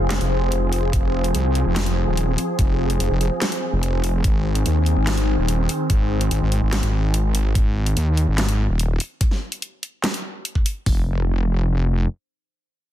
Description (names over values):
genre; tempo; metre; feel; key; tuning
heavy wobble dubstep; 145 BPM; 4/4; half-time; unclear; A4 = 439 Hz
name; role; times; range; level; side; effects
supersaw chords; sustained chords; 0.0-7.5 s; Eb3 to Ab4; -27 LUFS; right 1 dB; phaser, sidechain pumping, low-pass filter
wobble bass; bass; 0.0-12.1 s; Eb1 to Eb2; -20 LUFS; equal; chorus, overdrive
deep dark ambient pad; texture; 0.0-5.9 s; Eb4 to Ab5; -28 LUFS; left 1 dB; chorus, built-in reverb, sidechain pumping
dubstep drum kit; drums; 0.1-10.7 s; handclaps, hi-hat, snare drum; -26 LUFS; equal; none
dubstep drum kit; drums; 0.9-11.0 s; hi-hat, kick drum; -19 LUFS; equal; none
room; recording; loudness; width
little or no reverb; dense, heavily limited modern master; -18 LUFS; side -12 dB against mid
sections
0.0-10.9 A section; 10.9-12.9 B section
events
drop 0.0-10.9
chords
0.0 Ab; 10.9 N.C.